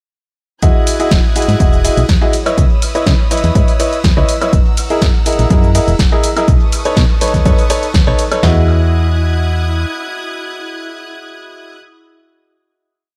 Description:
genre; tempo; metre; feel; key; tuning
piano house; 123 BPM; 4/4; straight; E major; A4 = 439 Hz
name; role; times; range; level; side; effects
rich studio string section; sustained chords; 0.6-11.8 s; E4 to G#6; -28 LUFS; equal; sidechain pumping
clear concert grand piano; riff; 0.6-11.8 s; D#4 to D#5; -20 LUFS; equal; sidechain pumping, analog delay
solid FM bass; bass; 0.6-9.9 s; E1 to C#3; -16 LUFS; equal; sidechain pumping
punchy analog drum machine; drums; 0.6-8.6 s; kick drum, snare drum, toms; -15 LUFS; equal; none
punchy analog drum machine; drums; 0.6-8.4 s; cabasa, hi-hat, ride cymbal, snare drum, woodblock; -24 LUFS; equal; analog delay
room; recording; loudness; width
little or no reverb; echo-heavy mix; -13 LUFS; mono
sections
0.6-8.4 drop; 8.4-12.3 final chord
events
drop 0.6-8.4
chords
0.6 Emaj9; 2.3 C#m9; 4.5 F#13; 6.5 B9; 8.4 Emaj9

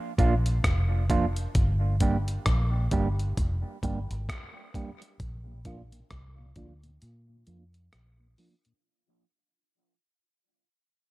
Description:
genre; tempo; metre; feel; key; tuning
dub reggae; 66 BPM; 4/4; swing 60% on 16ths; unclear; A4 = 440 Hz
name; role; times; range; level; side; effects
mellow electric guitar; accompaniment; 0.2-8.5 s; F3 to G4; -32 LUFS; right 4 dB; low-pass filter, dub echo
vintage muted fingered electric bass; bass; 0.2-8.3 s; F1 to Bb2; -28 LUFS; equal; none
breakbeat sampler-style drum kit; drums; 0.2-8.8 s; hi-hat, kick drum, rim click; -28 LUFS; equal; none
mellow tonewheel organ; accompaniment; 5.5-8.7 s; Bb2 to D4; -58 LUFS; left 3 dB; slow rotary speaker, low-pass filter
room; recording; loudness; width
digital ambience; dark, warm production; -24 LUFS; side -19 dB against mid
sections
0.0-8.8 A section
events
break 0.0-5.2, 7.0-8.8; fade-out 0.0-8.8; filter sweep 0.0-8.8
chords
0.0 Bb; 1.5 Gm; 5.2 Bb

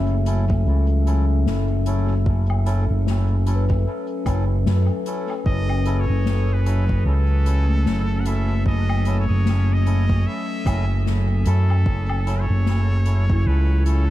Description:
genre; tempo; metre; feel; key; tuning
ambient dub; 75 BPM; 4/4; swing 59% on 16ths; F# dorian; A4 = 440 Hz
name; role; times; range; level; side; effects
warbly tape-like pad; sustained chords; 0.0-14.1 s; F#3 to G#5; -29 LUFS; left 4 dB; chorus, built-in reverb
vibraphone with medium mallets; arpeggios; 0.0-14.1 s; A3 to E5; -32 LUFS; left 1 dB; dub echo
overdriven fingered electric bass; bass; 0.0-14.1 s; F#1 to F#2; -18 LUFS; equal; none
melodica; stabs; 0.3-14.0 s; F#3 to A4; -34 LUFS; right 2 dB; dub echo
soft-mallet drum kit; drums; 0.3-14.0 s; hi-hat, snare drum, woodblock; -32 LUFS; left 4 dB; dub echo
electronic kick drum; drums; 0.5-13.4 s; none; -23 LUFS; equal; overdrive
trumpet with straight mute; melody; 5.5-14.1 s; A4 to F#5; -32 LUFS; equal; dub echo
room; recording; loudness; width
little or no reverb; echo-heavy mix; -18 LUFS; side -14 dB against mid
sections
0.0-14.1 A section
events
none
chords
0.0 F#m7

